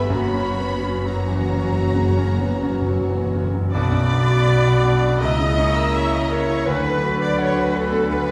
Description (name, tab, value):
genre	classical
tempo	61-85 BPM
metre	4/4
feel	rubato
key	B minor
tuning	A4 = 443 Hz
part	clear concert grand piano	melody	0.0-8.3 s	B1 to F#5	-26 LUFS	equal	none
part	dark studio violin section	melody	0.0-8.3 s	A#5 to B5	-36 LUFS	equal	none
part	rich studio violin section	second line	0.0-8.3 s	D4 to E6	-36 LUFS	equal	none
part	rich studio viola section	accompaniment	0.0-8.3 s	A#3 to E5	-28 LUFS	equal	none
part	mellow French horn section	sustained chords	0.0-8.3 s	F#3 to F#4	-29 LUFS	equal	none
part	clear studio cello section	bass	0.0-8.3 s	F#2 to D3	-31 LUFS	equal	none
part	rich studio double bass section	bass	0.0-8.3 s	F#1 to D2	-27 LUFS	equal	none
part	timpani	percussion	0.1-4.8 s	F#2 to B2	-27 LUFS	equal	none
part	bright concert flute	second line	3.7-8.3 s	A#5 to B5	-33 LUFS	equal	none
part	clear oboe	second line	3.7-8.3 s	E5 to F#5	-34 LUFS	equal	none
part	warm clarinet	second line	3.7-8.3 s	A4 to E5	-31 LUFS	equal	none
room	wet scoring stage reverb, RT60 1.5 s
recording	heard from further back in the room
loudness	-20 LUFS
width	mono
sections	0.0-3.7 A section; 3.7-8.3 B section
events	timpani fill 0.1-3.7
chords	0.1 F#; 3.7 Bm; 5.2 A#dim/C#; 6.7 Bm/D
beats	| 0.11 1.05 1.96 2.86 | 3.72 4.47 5.22 5.95 | 6.69 7.40 8.11